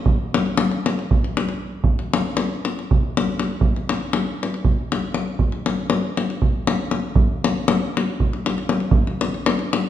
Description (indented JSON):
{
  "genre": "balkan folk",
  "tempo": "237 BPM (eighths)",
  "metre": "7/8",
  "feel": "straight",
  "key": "none",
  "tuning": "none",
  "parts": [
    { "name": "davul", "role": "percussion", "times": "0.1-9.8 s", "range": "none", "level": "-19 LUFS", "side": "equal", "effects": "none" }
  ],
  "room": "wet recital hall reverb, RT60 1.6 s",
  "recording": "minimal, uncompressed stereo recording",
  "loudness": "-19 LUFS",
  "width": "side -11 dB against mid",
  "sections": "0.0-8.9 A section",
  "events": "none",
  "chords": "none"
}